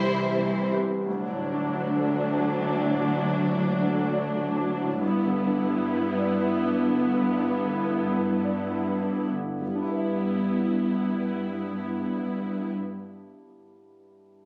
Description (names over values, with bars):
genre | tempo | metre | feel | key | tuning
cinematic, emotional film score for orchestra | 66-93 BPM | 3/4 | rubato | G major | A4 = 440 Hz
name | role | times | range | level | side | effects
rich symphonic violin section | melody | 0.0-0.7 s | C5 | -34 LUFS | equal | none
warm symphonic violin section | second line | 0.0-0.7 s | E4 | -34 LUFS | equal | none
clear concert grand piano | accompaniment | 0.0-14.5 s | C2 to E5 | -32 LUFS | equal | none
warm symphonic viola section | accompaniment | 0.0-12.7 s | F#3 to E4 | -30 LUFS | equal | none
warm studio double bass section | bass | 0.0-0.9 s | C2 | -35 LUFS | equal | none
warm symphonic cello section | bass | 0.0-12.7 s | D2 to E3 | -32 LUFS | equal | none
room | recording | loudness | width
wet scoring stage reverb, RT60 1.5 s | recorded on a phone in the room, club reverb | -26 LUFS | mono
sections
0.0-1.1 A section; 1.1-9.6 B section; 9.6-14.5 C section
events
slowing down 4.0-9.6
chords
0.0 Cmaj7; 1.1 D; 5.0 G6